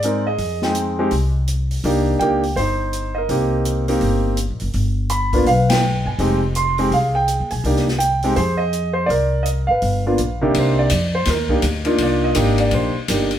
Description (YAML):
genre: jazz piano trio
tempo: 165 BPM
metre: 4/4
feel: swing 63% on 8ths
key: C minor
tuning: A4 = 442 Hz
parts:
  - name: warm concert grand piano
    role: melody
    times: 0.0-13.3 s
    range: C3 to C6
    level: -18 LUFS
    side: right 1 dB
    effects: none
  - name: upright bass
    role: bass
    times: 0.0-13.4 s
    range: F1 to Ab2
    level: -21 LUFS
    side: equal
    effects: none
  - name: open jazz drum kit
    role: drums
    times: 0.0-13.4 s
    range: hi-hat, kick drum, ride cymbal, snare drum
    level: -27 LUFS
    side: left 2 dB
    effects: none
room: moderate stone room reverb, RT60 1.1 s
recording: band playing live in one room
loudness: -16 LUFS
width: side -10 dB against mid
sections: 0.0-10.5 A section; 10.5-13.4 B section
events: band accent 5.6; grand piano solo 10.5-13.4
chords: 0.0 Fm7; 1.8 Cm7; 4.7 G7; 6.2 Fm7; 7.6 Cm7; 8.4 Fm7; 9.1 Ab69; 9.8 G7#9; 10.5 Cm7